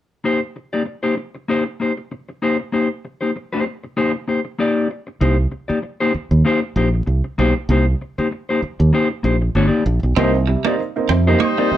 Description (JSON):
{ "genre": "funk", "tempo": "97 BPM", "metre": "4/4", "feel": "swing 56% on 16ths", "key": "C minor", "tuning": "A4 = 440 Hz", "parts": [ { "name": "mellow electric guitar", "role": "accompaniment", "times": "0.2-11.8 s", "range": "Bb3 to D5", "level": "-19 LUFS", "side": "left 2 dB", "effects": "none" }, { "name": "fingered electric bass", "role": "bass", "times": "5.2-11.7 s", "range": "G1 to F2", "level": "-16 LUFS", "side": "right 1 dB", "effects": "tube saturation" }, { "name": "clean electric guitar", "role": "riff", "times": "10.2-11.6 s", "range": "Bb3 to C4", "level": "-21 LUFS", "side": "right 8 dB", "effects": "none" }, { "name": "dark upright piano", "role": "stabs", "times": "10.2-11.8 s", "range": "C3 to Eb4", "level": "-20 LUFS", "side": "right 4 dB", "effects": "none" }, { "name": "clear horn section", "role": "second line", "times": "11.4-11.8 s", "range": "G3 to C5", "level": "-19 LUFS", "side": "equal", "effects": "none" } ], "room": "light reverb", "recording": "band playing live in one room", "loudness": "-17 LUFS", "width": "side -12 dB against mid", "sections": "0.2-10.2 A section; 10.2-11.8 B section", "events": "none", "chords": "0.2 Cm7" }